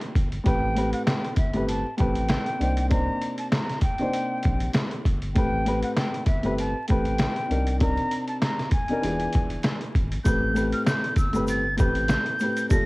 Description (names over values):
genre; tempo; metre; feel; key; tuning
hip hop, boom-bap hip-hop; 98 BPM; 4/4; swing 56% on 16ths; unclear; A4 = 435 Hz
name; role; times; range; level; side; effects
dark upright piano; accompaniment; 0.0-12.9 s; G2 to C5; -27 LUFS; equal; high-pass filter, low-pass filter, cassette tape
trip hop sampler-style drum kit; drums; 0.0-12.9 s; hi-hat, kick drum, snare drum; -25 LUFS; equal; cassette tape
soft dub sub bass; bass; 0.2-12.9 s; E1 to C2; -28 LUFS; equal; none
concert flute; melody; 0.5-12.9 s; E5 to Bb6; -29 LUFS; equal; high-pass filter, low-pass filter, cassette tape, tape echo
tube shaker; percussion; 10.3-12.9 s; none; -46 LUFS; right 3 dB; none
room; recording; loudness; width
studio reverb; home recording on cassette, vinyl crackle; -22 LUFS; side -23 dB against mid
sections
0.0-10.3 A section; 10.3-12.9 B section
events
none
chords
0.5 Am9; 2.6 Cm9; 5.4 Am9; 7.5 Cm9; 9.0 E7b9; 10.3 Am9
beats
| 0.46 1.07 1.68 2.30 | 2.91 3.52 4.13 4.75 | 5.36 5.97 6.58 7.19 | 7.81 8.42 9.03 9.64 | 10.26 10.87 11.48 12.09 | 12.71